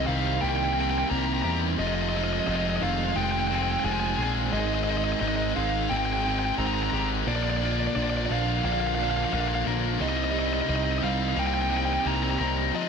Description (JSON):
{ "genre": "post-rock", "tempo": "88 BPM", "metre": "4/4", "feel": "straight", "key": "C minor", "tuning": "A4 = 444 Hz", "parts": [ { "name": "bluesy overdriven lead guitar", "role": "melody", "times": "0.0-12.9 s", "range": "D5 to Bb5", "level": "-29 LUFS", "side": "right 1 dB", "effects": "distortion, slapback echo, tape echo" }, { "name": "analog string pad", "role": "sustained chords", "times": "0.0-12.9 s", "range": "Ab3 to G5", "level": "-41 LUFS", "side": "right 1 dB", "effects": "none" }, { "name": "clean electric guitar", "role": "arpeggios", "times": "0.0-12.9 s", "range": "F2 to Bb4", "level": "-34 LUFS", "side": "left 4 dB", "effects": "slapback echo, tape echo" }, { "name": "crunchy overdriven guitar", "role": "riff", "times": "0.0-12.9 s", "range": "Ab2 to G4", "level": "-30 LUFS", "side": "left 12 dB", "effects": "none" }, { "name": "distorted electric guitar", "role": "riff", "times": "0.0-12.7 s", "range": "Ab2 to G4", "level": "-32 LUFS", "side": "right 12 dB", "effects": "distortion, slapback echo" }, { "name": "growling picked electric bass", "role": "bass", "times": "0.0-12.7 s", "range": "F1 to E2", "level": "-30 LUFS", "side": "equal", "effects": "overdrive" } ], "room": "moderate lush hall reverb, RT60 2.2 s", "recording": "big arena sound", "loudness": "-24 LUFS", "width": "side -6 dB against mid", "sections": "0.0-12.9 A section", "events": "none", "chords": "0.0 Cm7; 1.8 Fm7; 4.5 Abmaj7; 7.3 Bb; 10.0 Cm7" }